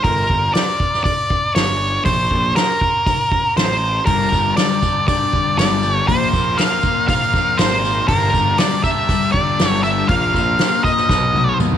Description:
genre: psychedelic rock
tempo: 119 BPM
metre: 4/4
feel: straight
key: unclear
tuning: A4 = 440 Hz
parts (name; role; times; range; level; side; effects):
- octave-fuzz lead guitar; melody; 0.0-11.6 s; Bb4 to E#5; -17 LUFS; equal; distortion, tape echo
- fuzz picked electric bass; bass; 0.0-11.8 s; G1 to D#2; -22 LUFS; right 1 dB; overdrive
- soft-mallet drum kit; drums; 0.0-11.8 s; hi-hat, kick drum, snare drum, toms; -20 LUFS; equal; none
- overdriven combo organ; sustained chords; 4.1-11.8 s; Bb3 to A5; -27 LUFS; right 16 dB; none
- thick fuzz guitar; riff; 4.1-11.8 s; G2 to B3; -22 LUFS; left 11 dB; distortion, phaser
- tambourine; percussion; 4.1-11.7 s; none; -34 LUFS; left 16 dB; none
room: light reverb, small room ambience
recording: 1960s-style stereo with parts hard left and right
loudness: -14 LUFS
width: side -9 dB against mid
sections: 0.0-11.8 A section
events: drum fill 11.1-11.8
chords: 0.1 Gm; 2.1 A#sus2; 4.1 Gmadd9; 6.1 A#sus2; 8.1 Gmadd9; 10.1 A#sus2; 11.1 B7

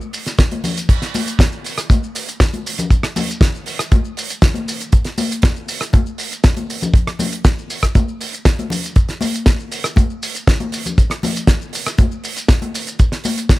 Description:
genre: nu-disco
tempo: 119 BPM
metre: 4/4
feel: straight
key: none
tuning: none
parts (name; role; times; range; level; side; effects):
- maracas and congas; percussion; 0.0-13.6 s; none; -25 LUFS; left 3 dB; none
- damped 70s drum kit; drums; 0.1-13.6 s; crash cymbal, hi-hat, rim click, shaker, snare drum; -20 LUFS; right 1 dB; small room ambience
- kick drum; drums; 0.4-13.6 s; none; -12 LUFS; equal; small room ambience
room: small room reverb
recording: none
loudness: -15 LUFS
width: side -18 dB against mid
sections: 0.9-13.6 A section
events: drop 0.9-13.6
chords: none

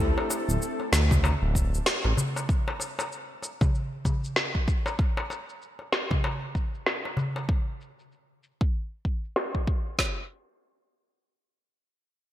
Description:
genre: organic downtempo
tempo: 96 BPM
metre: 4/4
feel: swing 59% on 16ths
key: unclear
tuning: A4 = 440 Hz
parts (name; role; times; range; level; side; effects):
- smooth synth bass; bass; 0.0-2.1 s; D1 to D2; -24 LUFS; equal; sidechain pumping
- darbuka; percussion; 0.2-7.5 s; none; -32 LUFS; left 1 dB; none
- electronic shaker and snare drum; drums; 0.3-10.0 s; none; -29 LUFS; equal; low-pass filter on hats, low-pass filter on perc, low-pass filter on snare, gated reverb
- deep house drum kit; drums; 1.1-10.2 s; kick drum, snare drum; -26 LUFS; equal; gated reverb
room: light reverb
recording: bright 1980s-style digital production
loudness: -25 LUFS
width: side -13 dB against mid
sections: 0.0-10.0 A section; 10.0-12.3 B section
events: filter sweep on drum 0.0-10.0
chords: none

